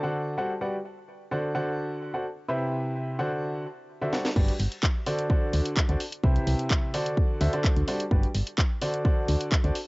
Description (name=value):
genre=piano house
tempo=128 BPM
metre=4/4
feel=straight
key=D mixolydian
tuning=A4 = 440 Hz
part: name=clear grand piano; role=riff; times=0.0-9.7 s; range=C3 to F#5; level=-29 LUFS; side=equal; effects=sidechain pumping, cassette tape, tape echo
part: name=house drum kit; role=drums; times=4.1-9.8 s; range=crash cymbal, handclaps, hi-hat, snare drum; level=-31 LUFS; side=equal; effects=cassette tape
part: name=solid FM bass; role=bass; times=4.4-9.7 s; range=G1 to D2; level=-25 LUFS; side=equal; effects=sidechain pumping
part: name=electronic kick drum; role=drums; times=4.4-9.6 s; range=none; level=-24 LUFS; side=equal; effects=cassette tape
room=light reverb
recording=home recording on cassette, nothing above 7.8 kHz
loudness=-24 LUFS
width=side -26 dB against mid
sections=0.0-4.4 A section; 4.4-9.9 B section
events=drum fill 4.1; drop 4.4-9.9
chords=0.0 D7; 0.6 Gmaj7; 1.3 D7; 2.3 Cmaj7; 3.4 D7; 4.4 Gmaj7; 5.1 D7; 6.0 Cmaj7; 7.2 D7; 8.1 Gmaj7; 8.8 D7